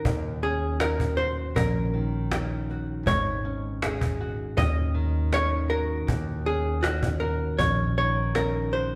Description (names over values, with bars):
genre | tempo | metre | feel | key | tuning
acoustic folk duo or small band | 80 BPM | 4/4 | straight | Eb minor | A4 = 440 Hz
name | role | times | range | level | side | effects
archtop guitar, miked and amplified | melody | 0.0-9.0 s | Gb4 to Eb5 | -30 LUFS | equal | none
nylon-string guitar | accompaniment | 0.0-9.0 s | Eb2 to Ab4 | -35 LUFS | equal | none
upright bass | bass | 0.0-9.0 s | Ab1 to Eb2 | -31 LUFS | equal | none
cajon | percussion | 0.1-8.5 s | none | -33 LUFS | equal | none
room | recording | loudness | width
wet large studio reverb, RT60 1.5 s | heard from further back in the room | -26 LUFS | mono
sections
0.0-9.0 A section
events
none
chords
0.1 Ebm7; 3.1 Ab7sus4; 6.1 Ebm7